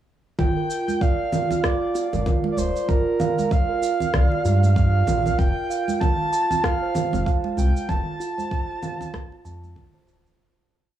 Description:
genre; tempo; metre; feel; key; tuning
organic downtempo; 96 BPM; 4/4; swing 58% on 16ths; G minor; A4 = 440 Hz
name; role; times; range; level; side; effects
breathy flute-like synth lead; melody; 0.4-9.8 s; Bb4 to A5; -26 LUFS; right 2 dB; chorus, tape echo
steel tongue drum; arpeggios; 0.4-10.4 s; F4 to A5; -27 LUFS; right 2 dB; tape echo
round analog bass; bass; 0.4-10.3 s; D1 to G2; -21 LUFS; equal; transformer saturation, sidechain pumping
electronic congas, shaker and rim click; drums; 0.4-10.4 s; none; -28 LUFS; right 1 dB; none
electronic kick drum; drums; 0.4-9.9 s; none; -23 LUFS; equal; none
bronze singing bowl; texture; 0.4-10.4 s; F4; -33 LUFS; right 5 dB; none
congas and bongos; percussion; 0.9-10.4 s; none; -31 LUFS; right 5 dB; none
room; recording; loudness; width
light reverb; dry, gritty hardware recording, small room ambience; -20 LUFS; side -11 dB against mid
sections
0.4-10.4 groove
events
fade-out 7.1-10.4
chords
0.4 Gm7; 5.4 F

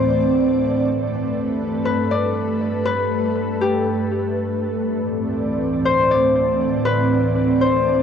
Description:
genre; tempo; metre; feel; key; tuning
hip hop; 120 BPM; 4/4; half-time; G major; A4 = 440 Hz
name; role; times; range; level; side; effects
Celtic harp; melody; 0.0-8.0 s; G4 to D5; -21 LUFS; left 5 dB; cassette tape, analog delay
ethereal airy pad; sustained chords; 0.0-8.0 s; D2 to D5; -19 LUFS; right 2 dB; ensemble chorus, built-in reverb
room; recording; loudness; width
wet booth ambience, RT60 0.2 s; home recording on cassette; -17 LUFS; side -7 dB against mid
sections
0.0-8.0 A section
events
none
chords
0.0 Dsus2; 0.9 Gadd9; 4.9 Dsus2

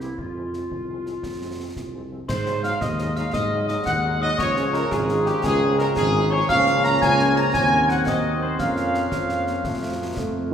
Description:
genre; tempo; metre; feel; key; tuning
military-style march for wind band; 114 BPM (dotted quarters); 6/8; straight; Bb minor from 6.5 s; A4 = 440 Hz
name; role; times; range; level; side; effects
dark trumpet section; melody; 0.0-10.5 s; C4 to Bb5; -25 LUFS; right 1 dB; none
mellow woodwind section; second line; 0.0-10.5 s; E4 to Bb5; -26 LUFS; equal; none
warm French horn section; accompaniment; 0.0-10.5 s; C3 to Eb4; -30 LUFS; left 2 dB; none
mellow tuba; bass; 0.0-10.5 s; Ab1 to Ab2; -26 LUFS; right 2 dB; none
concert snare drum, concert bass drum and clash cymbals; drums; 0.0-10.3 s; none; -32 LUFS; equal; none
glockenspiel with soft plastic mallets; second line; 2.3-10.5 s; G5 to Bb6; -27 LUFS; left 4 dB; none
dark trombone section; sustained chords; 2.3-10.5 s; F3 to Db4; -31 LUFS; right 2 dB; none
room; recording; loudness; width
wet recital hall reverb, RT60 1.7 s; recorded in a church or concert hall; -19 LUFS; side -8 dB against mid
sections
0.0-2.3 A section; 2.3-10.5 B section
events
none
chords
0.2 Fm; 2.3 Ab7; 4.4 Db; 6.5 Bbm/Db; 7.5 Cm7b5/Eb; 8.6 Bbm/F; 9.6 F

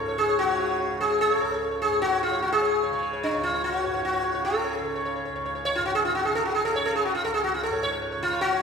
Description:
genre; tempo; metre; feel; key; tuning
indian classical, Hindustani; 149 BPM; 4/4; straight; unclear; A4 = 440 Hz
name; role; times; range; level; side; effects
sitar; melody; 0.0-8.6 s; D4 to C#5; -23 LUFS; equal; none
tanpura; drone; 0.0-8.6 s; C#2 to C#3; -34 LUFS; right 1 dB; none
room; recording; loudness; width
wet recital hall reverb, RT60 1.5 s; recorded in a church or concert hall; -23 LUFS; side -6 dB against mid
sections
0.0-8.6 A section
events
speeding up 0.0-8.6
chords
none

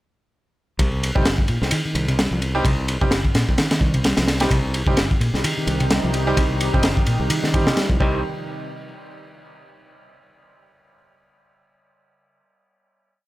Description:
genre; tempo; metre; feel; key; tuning
breakbeat, breaks; 129 BPM; 4/4; swing 56% on 16ths; C minor; A4 = 441 Hz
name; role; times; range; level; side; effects
picked electric bass; riff; 0.8-8.2 s; Bb2 to G3; -24 LUFS; equal; none
modern bright fingered electric bass; bass; 0.8-8.2 s; G1 to C2; -24 LUFS; equal; none
crunchy breakbeat drum kit; drums; 0.8-8.1 s; kick drum, ride cymbal, snare drum; -21 LUFS; equal; none
clear grand piano; stabs; 1.2-8.2 s; G3 to G4; -27 LUFS; right 1 dB; vintage 12-bit sampler grit, dub echo
lush unison pad; sustained chords; 5.2-8.2 s; C3 to G4; -28 LUFS; equal; chorus, sidechain pumping
room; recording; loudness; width
studio ambience; none; -17 LUFS; side -17 dB against mid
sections
0.8-8.2 drop; 8.2-10.1 final hit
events
drop 0.8-8.2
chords
0.8 Cm; 8.2 N.C.

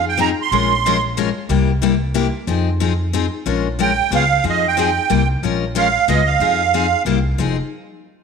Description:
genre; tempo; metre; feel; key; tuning
acoustic string swing (jazz manouche); 183 BPM; 3/4; swing 60% on 8ths; F minor; A4 = 441 Hz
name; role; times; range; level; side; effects
musette accordion; melody; 0.0-1.0, 3.8-7.0 s; Eb5 to C6; -17 LUFS; right 9 dB; slapback echo
upright bass; bass; 0.0-7.6 s; F1 to F2; -21 LUFS; equal; none
picked steel-string acoustic guitar; accompaniment; 0.2-7.6 s; C3 to Bb4; -20 LUFS; left 10 dB; none
room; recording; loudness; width
wet echo chamber reverb, RT60 1.6 s, small room ambience; 1960s-style stereo with parts hard left and right; -15 LUFS; side -6 dB against mid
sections
0.0-3.5 A section; 3.5-7.4 B section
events
none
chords
0.0 Fm7; 0.5 Bbm9; 1.5 C7; 2.5 Fm7; 3.5 Bbm7; 4.1 Db7; 4.4 Fm9; 5.1 C7; 5.4 Bbm7; 6.1 Db9; 6.4 Fm7; 7.1 C7; 7.4 Fm7

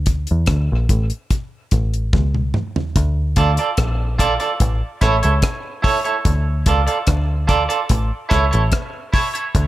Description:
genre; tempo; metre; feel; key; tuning
dub reggae; 73 BPM; 4/4; straight; D harmonic minor; A4 = 440 Hz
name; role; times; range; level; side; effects
deep dub picked electric bass; bass; 0.0-9.7 s; A1 to E2; -18 LUFS; equal; none
deep reggae drum kit; drums; 0.1-9.7 s; hi-hat, kick drum, rim click, toms; -19 LUFS; equal; none
semi-hollow electric guitar; accompaniment; 3.4-9.4 s; E4 to D5; -20 LUFS; right 4 dB; high-pass filter, dub echo
room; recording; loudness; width
small room ambience; none; -16 LUFS; side -15 dB against mid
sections
0.0-3.0 A section; 3.0-9.7 B section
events
break 0.0-3.0; drum fill 2.1-3.0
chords
0.0 D5; 1.3 A; 3.0 Dm; 4.6 A; 6.3 Dm; 7.9 A

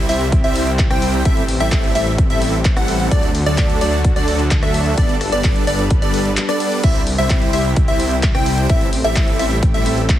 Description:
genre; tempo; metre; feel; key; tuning
EDM, festival progressive house; 129 BPM; 4/4; straight; unclear; A4 = 440 Hz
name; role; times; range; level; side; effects
lush unison pad; sustained chords; 0.0-10.2 s; C3 to B4; -25 LUFS; left 1 dB; chorus, vintage 12-bit sampler grit, sidechain pumping
plucky unison lead; arpeggios; 0.0-10.0 s; D5 to G5; -23 LUFS; equal; sidechain pumping, digital delay
supersaw chords; riff; 0.0-10.0 s; F#3 to G5; -22 LUFS; equal; lush chorus, sidechain pumping, digital delay
detuned saw bass; bass; 0.0-10.2 s; G1 to D2; -21 LUFS; equal; sidechain pumping
big-room dance drum kit; drums; 0.1-10.2 s; crash cymbal, handclaps, hi-hat, rim click; -25 LUFS; left 1 dB; none
electronic kick drum; drums; 0.3-10.2 s; none; -16 LUFS; equal; none
room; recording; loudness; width
light reverb, digital ambience; heavily compressed radio sound, multiband compression; -14 LUFS; side -12 dB against mid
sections
0.0-10.2 A section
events
none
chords
0.0 C; 1.3 Am7; 3.1 D; 5.0 Gadd9; 6.8 C; 8.7 Am7

